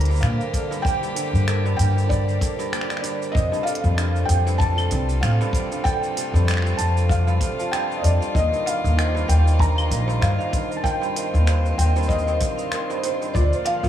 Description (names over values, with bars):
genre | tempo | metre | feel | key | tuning
folktronica | 96 BPM | 4/4 | swing 56% on 16ths | unclear | A4 = 441 Hz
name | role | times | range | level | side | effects
felt-muted upright piano | melody | 0.0-13.9 s | C5 to Bb5 | -27 LUFS | equal | analog chorus, analog delay
vibraphone with medium hard mallets | second line | 0.0-13.9 s | A4 to A5 | -31 LUFS | right 5 dB | diffuse ambient delay
warm string quartet | sustained chords | 0.0-13.9 s | C3 to G4 | -32 LUFS | left 2 dB | none
kora | arpeggios | 0.0-13.9 s | G2 to Bb3 | -30 LUFS | right 1 dB | analog delay
upright bass | bass | 0.0-13.9 s | Bb1 to Bb2 | -19 LUFS | left 1 dB | none
organic electronic drum kit | drums | 0.0-13.9 s | claves, finger snaps, hi-hat, shaker | -31 LUFS | right 1 dB | small room ambience
kick drum | drums | 0.5-13.5 s | none | -24 LUFS | left 1 dB | small room ambience
flickering grainy texture | texture | 10.0-13.9 s | C5 to C6 | -36 LUFS | equal | built-in reverb, ensemble chorus
room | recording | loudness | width
moderate plate reverb, RT60 2.2 s | dreamy mix soaked in reverb | -19 LUFS | side -11 dB against mid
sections
0.0-13.9 A section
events
none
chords
0.0 Gm; 3.3 Fadd9; 8.3 Ebadd9; 13.3 Bb